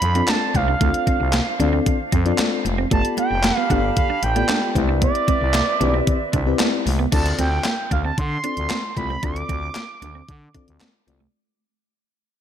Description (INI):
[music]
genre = early-eighties boogie funk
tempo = 114 BPM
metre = 4/4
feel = straight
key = D dorian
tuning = A4 = 440 Hz
[part]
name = expressive synth lead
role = melody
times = 0.0-10.8 s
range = D5 to D6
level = -24 LUFS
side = right 4 dB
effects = chorus, tape echo
[part]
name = small flute group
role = sustained chords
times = 0.0-7.1 s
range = C4 to B5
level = -30 LUFS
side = right 1 dB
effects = none
[part]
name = clean electric guitar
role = riff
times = 0.0-11.3 s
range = A3 to D4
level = -29 LUFS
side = right 10 dB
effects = analog chorus
[part]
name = growling FM bass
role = bass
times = 0.0-11.3 s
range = F1 to D3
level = -23 LUFS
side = equal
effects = none
[part]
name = clean 12-bit digital drum machine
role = drums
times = 0.0-11.2 s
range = crash cymbal, handclaps, hi-hat, kick drum, snare drum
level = -23 LUFS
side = equal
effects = overdrive, gated reverb
[part]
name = mellow FM electric piano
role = accompaniment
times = 0.2-11.2 s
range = A3 to D5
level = -26 LUFS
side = left 6 dB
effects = chorus
[part]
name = congas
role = percussion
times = 0.3-11.3 s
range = none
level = -31 LUFS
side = left 4 dB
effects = none
[sound]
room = light reverb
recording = none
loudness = -18 LUFS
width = side -9 dB against mid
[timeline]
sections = 0.0-7.1 A section; 7.1-11.3 B section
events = fade-out 7.1-11.3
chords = 0.0 Dm7; 2.9 G9; 4.8 Cmaj9; 7.1 Dm7